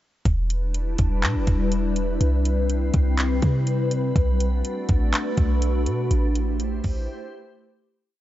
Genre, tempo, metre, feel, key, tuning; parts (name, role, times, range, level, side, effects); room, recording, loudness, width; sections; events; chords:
hip hop, atmospheric cloud-rap; 123 BPM; 4/4; half-time; E minor; A4 = 440 Hz
glassy FM pad; sustained chords; 0.6-8.0 s; G3 to C5; -26 LUFS; left 2 dB; ensemble chorus, built-in reverb, phaser, sidechain pumping
clean 808-style bass; bass; 0.3-7.1 s; E1 to C3; -22 LUFS; equal
smooth R&B drum kit; drums; 0.3-7.0 s; handclaps, hi-hat, kick drum; -24 LUFS; equal; vintage 12-bit sampler grit
little or no reverb; nothing above 7.7 kHz; -20 LUFS; side -14 dB against mid
0.3-8.1 verse
fade-out 6.1-8.1; break 7.1-8.1
0.3 Em7; 2.2 Cmaj7; 4.2 Bm7; 6.1 Am7